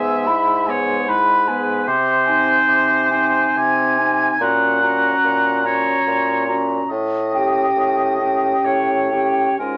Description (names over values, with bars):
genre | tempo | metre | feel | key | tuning
classical, slow romantic movement for wind quintet | 62-77 BPM | 3/4 | rubato | unclear | A4 = 440 Hz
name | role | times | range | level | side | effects
concert flute | melody | 0.0-9.8 s | G5 to B5 | -22 LUFS | equal | none
warm oboe | second line | 0.0-9.8 s | Bb4 to Ab5 | -22 LUFS | equal | none
warm French horn | accompaniment | 0.0-9.8 s | G#3 to Db4 | -31 LUFS | equal | none
warm clarinet | accompaniment | 0.0-9.8 s | Eb4 to G#4 | -29 LUFS | equal | none
warm bassoon | bass | 0.0-9.8 s | Ab2 to C3 | -25 LUFS | equal | none
room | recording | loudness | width
moderate studio reverb, RT60 0.8 s | vinyl crackle | -18 LUFS | mono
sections
0.0-9.8 A section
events
none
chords
0.0 E/G#; 1.9 Ab/C; 4.4 Gb/Bb; 6.9 A7